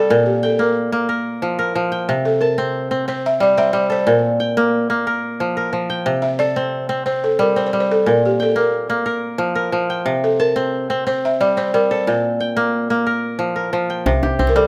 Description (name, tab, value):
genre	west african traditional, West African string and xylophone music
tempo	120 BPM (dotted quarters)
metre	12/8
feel	straight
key	unclear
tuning	A4 = 440 Hz
part	balafon	melody	0.0-14.7 s	G4 to E5	-21 LUFS	equal	none
part	kora	arpeggios	0.0-14.7 s	Bb2 to A5	-20 LUFS	equal	none
part	djembe	percussion	14.1-14.5 s	none	-21 LUFS	equal	none
room	moderate recital hall reverb, RT60 1.6 s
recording	close, detailed microphones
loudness	-19 LUFS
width	mono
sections	0.0-14.1 A section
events	none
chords	0.1 Bb5; 2.1 C5; 4.1 Bb5; 6.1 C5; 8.1 Bb5; 10.1 C5; 12.1 Bb5; 14.1 C5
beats	| 0.10 0.59 1.08 1.58 | 2.08 2.57 3.07 3.57 | 4.06 4.56 5.06 5.56 | 6.06 6.56 7.06 7.56 | 8.06 8.56 9.06 9.56 | 10.06 10.56 11.06 11.56 | 12.06 12.56 13.06 13.56 | 14.05 14.55